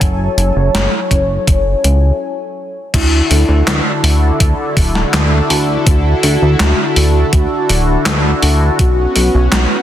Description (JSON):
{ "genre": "synthwave", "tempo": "82 BPM", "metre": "4/4", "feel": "straight", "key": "unclear", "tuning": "A4 = 439 Hz", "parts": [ { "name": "warm velvety synth lead", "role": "melody", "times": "0.0-9.7 s", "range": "E4 to C#5", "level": "-20 LUFS", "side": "left 2 dB", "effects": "chorus, digital delay" }, { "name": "warm analog pad", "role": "sustained chords", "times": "0.0-9.8 s", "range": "D3 to G#5", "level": "-18 LUFS", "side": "equal", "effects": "chorus, vintage 12-bit sampler grit, sidechain pumping" }, { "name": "chorused synth bass", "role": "bass", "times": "0.0-9.7 s", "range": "D1 to D2", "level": "-13 LUFS", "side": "equal", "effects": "sidechain pumping" }, { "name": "electronic kick drum", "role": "drums", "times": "0.0-8.9 s", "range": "none", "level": "-13 LUFS", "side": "equal", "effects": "none" }, { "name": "gated 80s digital drum machine", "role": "drums", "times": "0.0-9.7 s", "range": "crash cymbal, handclaps, hi-hat, snare drum", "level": "-17 LUFS", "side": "equal", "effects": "gated reverb, gated reverb snare" } ], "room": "light reverb", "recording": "dense, heavily limited modern master", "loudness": "-10 LUFS", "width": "side -11 dB against mid", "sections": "0.0-2.9 A section; 2.9-9.8 B section", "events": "break 2.2-2.9", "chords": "0.0 F#m7; 2.9 Dadd9; 8.8 Bsus2" }